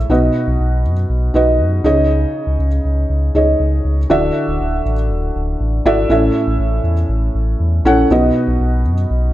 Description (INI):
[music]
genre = piano-driven pop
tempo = 120 BPM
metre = 4/4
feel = straight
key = unclear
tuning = A4 = 441 Hz
[part]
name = felt-muted upright piano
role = accompaniment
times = 0.0-9.3 s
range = A2 to F#5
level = -16 LUFS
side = equal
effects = none
[part]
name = sub bass with octave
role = bass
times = 0.0-9.3 s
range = D1 to F#2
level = -16 LUFS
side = equal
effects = none
[sound]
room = light reverb, studio reverb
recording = none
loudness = -13 LUFS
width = side -14 dB against mid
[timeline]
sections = 0.0-4.1 A section; 4.1-9.3 B section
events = none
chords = 0.1 B; 1.8 C#sus2; 4.1 Dadd9; 6.1 A; 8.1 B